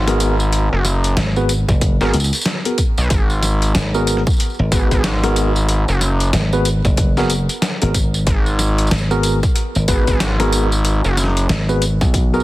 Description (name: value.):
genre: glitch hop.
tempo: 93 BPM.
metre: 4/4.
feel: swing 61% on 16ths.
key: G# minor.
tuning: A4 = 440 Hz.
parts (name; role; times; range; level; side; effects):
gritty driven synth bass; bass; 0.0-11.5 s; F#1 to B1; -16 LUFS; equal; none.
tine electric piano; stabs; 0.1-12.4 s; B3 to B4; -22 LUFS; equal; fast stereo tremolo, sidechain pumping, dub echo.
boom bap sampler-style drum kit; drums; 0.1-12.4 s; hi-hat, snare drum, tambourine; -22 LUFS; equal; none.
dry thumbed slap bass; bass; 1.2-12.4 s; F#1 to C#2; -18 LUFS; equal; none.
electronic kick drum; drums; 1.7-12.3 s; none; -17 LUFS; equal; none.
room: little or no reverb.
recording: dense, heavily limited modern master, vinyl crackle.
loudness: -14 LUFS.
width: side -17 dB against mid.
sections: 0.0-12.4 A section.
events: none.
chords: 0.0 G#m9.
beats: | 0.53 1.17 1.82 2.46 | 3.11 3.75 4.40 5.04 | 5.69 6.33 6.98 7.62 | 8.27 8.91 9.56 10.20 | 10.85 11.49 12.14.